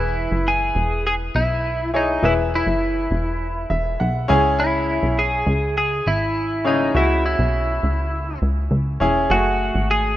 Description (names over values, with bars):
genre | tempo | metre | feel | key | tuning
pop | 102 BPM | 4/4 | straight | E major | A4 = 440 Hz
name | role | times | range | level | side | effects
twelve-string electric guitar | melody | 0.0-10.2 s | D#4 to G#4 | -22 LUFS | equal | none
bright grand piano | accompaniment | 0.0-10.2 s | C#3 to G#5 | -23 LUFS | left 1 dB | none
plucky analog bass | bass | 0.0-10.2 s | E1 to C#2 | -22 LUFS | equal | none
room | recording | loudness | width
light reverb, studio ambience | rough home demo mix | -18 LUFS | side -14 dB against mid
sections
0.0-10.2 A section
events
grand piano fill 3.4-4.6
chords
0.0 E; 9.3 F#madd9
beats
0.46 1.05 1.64 | 2.23 2.82 3.41 4.00 | 4.59 5.18 5.76 6.36 | 6.94 7.53 8.12 8.71 | 9.30 9.89